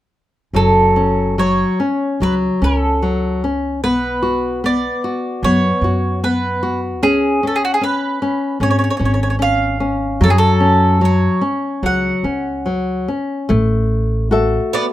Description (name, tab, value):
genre	fado-style ballad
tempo	74 BPM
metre	4/4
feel	rubato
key	F# harmonic minor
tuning	A4 = 440 Hz
part	nylon-string guitar	accompaniment	0.5-14.9 s	F#3 to E5	-18 LUFS	left 2 dB	none
part	upright bass	bass	0.5-14.6 s	F#1 to F#2	-19 LUFS	right 1 dB	none
part	mandolin	melody	0.6-14.9 s	F#4 to F#5	-18 LUFS	right 2 dB	none
part	picked twelve-string acoustic guitar	second line	14.7-14.8 s	B3	-20 LUFS	right 4 dB	wide subtle chorus
room	little or no reverb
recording	rough home demo mix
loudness	-14 LUFS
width	side -14 dB against mid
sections	0.5-13.5 A section; 13.5-14.9 B section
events	none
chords	0.5 F#m; 3.8 Bm; 7.0 C#7; 10.2 F#5; 13.5 A5